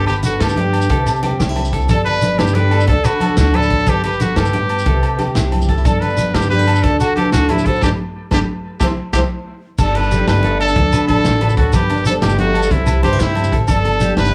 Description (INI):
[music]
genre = highlife guitar band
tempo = 122 BPM (dotted quarters)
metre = 12/8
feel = straight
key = G major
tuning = A4 = 441 Hz
[part]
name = bright trumpet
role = melody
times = 0.0-14.3 s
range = E4 to B4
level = -22 LUFS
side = equal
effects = none
[part]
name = breathy mellow round clay ocarina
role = second line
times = 0.0-14.3 s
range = G4 to D5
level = -27 LUFS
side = equal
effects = none
[part]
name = picked plugged-in steel-string acoustic guitar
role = accompaniment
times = 0.0-14.3 s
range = G2 to A4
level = -25 LUFS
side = equal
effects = none
[part]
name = clean electric guitar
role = arpeggios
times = 0.0-14.3 s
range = E4 to C5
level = -28 LUFS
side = equal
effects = spring reverb, tape echo
[part]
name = upright bass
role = bass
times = 0.0-14.3 s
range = G1 to G2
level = -21 LUFS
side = equal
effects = none
[part]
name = vintage drum kit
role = drums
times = 0.1-14.2 s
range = crash cymbal, hi-hat, kick drum, snare drum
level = -24 LUFS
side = equal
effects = none
[part]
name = agogo bells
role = percussion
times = 0.1-14.3 s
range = none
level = -29 LUFS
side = equal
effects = none
[part]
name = congas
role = percussion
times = 0.1-14.3 s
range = none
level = -26 LUFS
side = equal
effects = none
[part]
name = shekere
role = percussion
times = 0.2-14.3 s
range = none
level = -25 LUFS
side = equal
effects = none
[sound]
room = light reverb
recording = small room ambience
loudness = -16 LUFS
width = mono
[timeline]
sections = 0.0-9.8 A section; 9.8-14.3 B section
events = band accent 7.8-9.8; drum fill 8.8-9.8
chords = 0.0 Gadd9; 0.9 C; 1.9 Gadd9; 2.9 D; 3.9 Gadd9; 4.9 C; 5.9 Gadd9; 6.8 D; 7.8 Gadd9; 8.8 C; 9.8 Gadd9; 10.8 D; 11.7 Gadd9; 12.7 C; 13.7 Gadd9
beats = 0.40 0.90 1.40 | 1.89 2.39 2.89 3.38 | 3.88 4.37 4.87 5.36 | 5.86 6.35 6.84 7.34 | 7.83 8.32 8.81 9.30 | 9.79 10.28 10.77 11.25 | 11.74 12.23 12.71 13.20 | 13.69 14.17